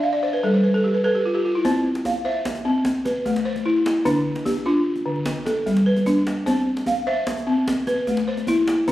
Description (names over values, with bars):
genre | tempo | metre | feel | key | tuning
west african traditional, West African string and xylophone music | 100 BPM (dotted quarters) | 12/8 | straight | C major | A4 = 440 Hz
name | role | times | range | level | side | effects
balafon | arpeggios | 0.0-8.9 s | D3 to F5 | -19 LUFS | equal | none
djembe | percussion | 1.6-8.9 s | none | -29 LUFS | right 1 dB | none
room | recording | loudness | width
moderate recital hall reverb, RT60 1.6 s | recorded on a phone in the room, studio reverb | -19 LUFS | side -14 dB against mid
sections
0.0-1.6 A section; 1.6-8.9 B section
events
balafon fill 0.0-1.6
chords
0.4 G; 1.6 C; 2.8 Am; 4.1 Dm; 5.3 G; 6.5 C; 7.7 Am